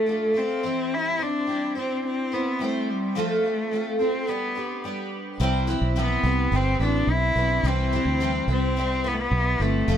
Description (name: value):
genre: acoustic pop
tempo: 107 BPM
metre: 4/4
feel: straight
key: C major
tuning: A4 = 440 Hz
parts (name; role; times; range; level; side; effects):
- clear cello; melody; 0.0-10.0 s; G3 to E4; -26 LUFS; left 2 dB; digital delay
- picked twelve-string acoustic guitar; accompaniment; 0.0-10.0 s; C3 to C5; -26 LUFS; right 1 dB; double-tracked left and right
- fingered electric bass; bass; 5.4-10.0 s; F1 to D2; -24 LUFS; right 1 dB; none
room: light reverb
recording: none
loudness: -22 LUFS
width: side -9 dB against mid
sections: 0.0-5.4 A section; 5.4-10.0 B section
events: none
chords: 0.0 Dm; 0.6 C/E; 3.2 F; 4.3 G; 5.4 Cmaj7